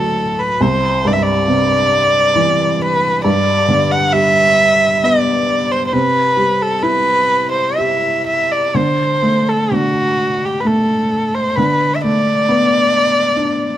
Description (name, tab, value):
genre	celtic folk, Celtic slow air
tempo	62-70 BPM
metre	3/4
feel	rubato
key	unclear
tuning	A4 = 440 Hz
part	warm erhu	melody	0.0-13.8 s	F#4 to F#5	-14 LUFS	equal	none
part	felt-muted upright piano	accompaniment	0.0-13.8 s	C2 to G4	-17 LUFS	equal	none
room	light reverb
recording	close, detailed microphones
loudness	-12 LUFS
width	side -12 dB against mid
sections	0.0-13.8 A section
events	none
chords	0.0 D; 0.6 C; 3.2 G; 5.9 C; 8.8 D5; 11.6 Bm7/D